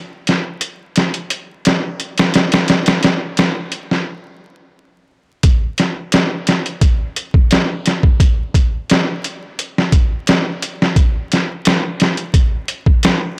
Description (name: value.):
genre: trip hop.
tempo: 87 BPM.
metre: 4/4.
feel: straight.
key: none.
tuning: none.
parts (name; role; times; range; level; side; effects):
trip hop sampler-style drum kit; drums; 0.3-13.2 s; hi-hat, kick drum, snare drum; -16 LUFS; equal; studio reverb.
room: light reverb, digital ambience.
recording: dry, gritty hardware recording, vinyl crackle.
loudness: -16 LUFS.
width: mono.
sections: 0.0-5.4 A section; 5.4-13.4 B section.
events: stop 4.1-5.4.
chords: none.